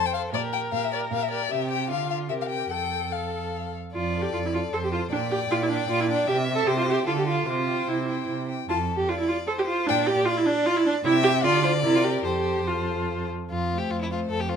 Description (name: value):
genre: quick classical-period movement for string quartet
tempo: 152 BPM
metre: 3/4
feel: rubato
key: F major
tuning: A4 = 439 Hz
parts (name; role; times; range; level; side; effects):
- warm violin; melody; 0.0-14.6 s; A4 to A5; -30 LUFS; left 11 dB; none
- rich violin; second line; 0.0-14.6 s; E4 to E5; -32 LUFS; left 5 dB; none
- rich viola; accompaniment; 0.0-14.6 s; A3 to C5; -25 LUFS; right 2 dB; none
- warm cello; bass; 0.0-14.6 s; F2 to D3; -30 LUFS; right 6 dB; none
room: light reverb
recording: close, detailed microphones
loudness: -23 LUFS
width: side -7 dB against mid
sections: 0.0-3.9 A section; 3.9-13.5 B section; 13.5-14.6 B section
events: none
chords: 0.3 Gm/Bb; 1.5 C; 1.9 Dm; 2.3 C5; 2.7 F; 5.1 Gm/Bb; 6.3 C; 7.1 Dm; 7.5 C; 8.7 F; 9.9 Gm/Bb; 11.1 C; 11.4 Dm; 11.8 C5; 12.2 F